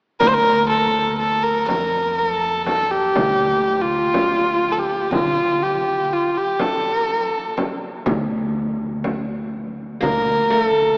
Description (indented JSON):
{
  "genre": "Turkish makam ensemble",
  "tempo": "122 BPM (eighths)",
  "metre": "10/8",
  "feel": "straight",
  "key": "D minor",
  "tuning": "A4 = 441 Hz",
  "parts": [
    { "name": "rich kamancheh", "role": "melody", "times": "0.2-11.0 s", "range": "F4 to C5", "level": "-17 LUFS", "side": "equal", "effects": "none" },
    { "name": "upright bass", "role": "bass", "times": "0.2-11.0 s", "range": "D2 to D3", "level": "-27 LUFS", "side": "equal", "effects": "none" },
    { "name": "darbuka", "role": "percussion", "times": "0.2-10.3 s", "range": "none", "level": "-35 LUFS", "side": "equal", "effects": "none" },
    { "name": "frame drum", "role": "percussion", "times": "0.2-10.3 s", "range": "none", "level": "-27 LUFS", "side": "equal", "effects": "none" },
    { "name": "oud", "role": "second line", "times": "10.0-11.0 s", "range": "A3 to Bb3", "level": "-19 LUFS", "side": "equal", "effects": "none" }
  ],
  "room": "wet cathedral reverb, RT60 4.6 s",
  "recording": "recorded in a church or concert hall, AM radio sound",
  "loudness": "-17 LUFS",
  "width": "side -36 dB against mid",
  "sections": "0.2-11.0 A section",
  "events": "none",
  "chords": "none"
}